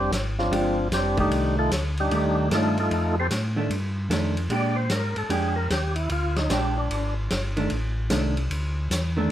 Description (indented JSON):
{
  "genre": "soul jazz organ trio",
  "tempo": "150 BPM",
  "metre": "4/4",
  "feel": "swing 66% on 8ths",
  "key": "F mixolydian",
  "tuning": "A4 = 437 Hz",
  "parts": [
    { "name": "percussive tonewheel organ", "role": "melody", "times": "0.0-7.1 s", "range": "F3 to D5", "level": "-26 LUFS", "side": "left 1 dB", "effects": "slow rotary speaker" },
    { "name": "mellow tonewheel organ", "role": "bass", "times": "0.0-9.3 s", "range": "F1 to Bb2", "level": "-26 LUFS", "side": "equal", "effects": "slow rotary speaker" },
    { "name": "warm soul drum kit", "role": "drums", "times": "0.1-9.0 s", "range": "hi-hat, kick drum, ride cymbal, snare drum", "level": "-30 LUFS", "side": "equal", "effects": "none" },
    { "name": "vintage hollow-body jazz guitar", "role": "accompaniment", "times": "0.5-9.3 s", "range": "Eb3 to G4", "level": "-27 LUFS", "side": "right 2 dB", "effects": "none" }
  ],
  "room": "light reverb",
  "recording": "none",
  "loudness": "-22 LUFS",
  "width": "side -11 dB against mid",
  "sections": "0.0-9.3 A section",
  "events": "tonewheel organ solo 0.0-9.3",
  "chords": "0.0 Bb13 (rootless); 1.3 F13; 4.5 Bb6; 7.7 F13 (rootless)"
}